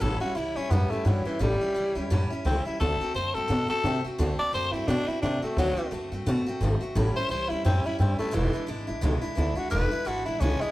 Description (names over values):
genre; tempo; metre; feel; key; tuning
rockabilly; 173 BPM; 4/4; swing 58% on 8ths; unclear; A4 = 440 Hz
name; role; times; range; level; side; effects
growling tenor saxophone; melody; 0.0-10.7 s; E3 to D5; -28 LUFS; left 1 dB; none
picked steel-string acoustic guitar; accompaniment; 0.0-10.7 s; E2 to F#4; -32 LUFS; equal; none
upright bass; bass; 0.0-10.6 s; E1 to C3; -27 LUFS; equal; none
room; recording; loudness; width
moderate stone room reverb, RT60 1.3 s; band playing live in one room; -24 LUFS; side -17 dB against mid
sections
0.0-10.7 A section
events
tenor saxophone solo 0.0-10.7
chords
0.0 A7; 2.8 D7; 7.0 A7; 8.3 E7